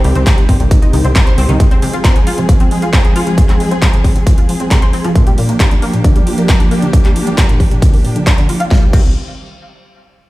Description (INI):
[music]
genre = uplifting trance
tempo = 135 BPM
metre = 4/4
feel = straight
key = C minor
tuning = A4 = 441 Hz
[part]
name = dark symphonic string section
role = sustained chords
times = 0.0-8.9 s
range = Eb3 to Ab4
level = -18 LUFS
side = right 1 dB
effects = sidechain pumping
[part]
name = analog pluck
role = arpeggios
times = 0.0-9.1 s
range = Bb2 to C5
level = -19 LUFS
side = left 1 dB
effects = ensemble chorus, cassette tape, sidechain pumping, dub echo
[part]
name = plucky analog bass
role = bass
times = 0.0-1.6, 8.7-9.1 s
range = G1 to C2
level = -13 LUFS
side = equal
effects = sidechain pumping
[part]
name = big-room dance drum kit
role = drums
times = 0.0-9.0 s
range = crash cymbal, handclaps, hi-hat, snare drum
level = -21 LUFS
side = equal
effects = none
[part]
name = electronic kick drum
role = drums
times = 0.3-9.0 s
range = none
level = -10 LUFS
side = equal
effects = none
[sound]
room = little or no reverb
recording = played on a big sound system in a bare room, stone room reverb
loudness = -9 LUFS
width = side -18 dB against mid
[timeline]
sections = 0.0-8.7 A section; 8.7-10.3 B section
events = filter sweep on synth pluck 0.0-8.7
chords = 0.0 Cm; 1.6 Fm; 5.2 Gm7; 8.7 Cm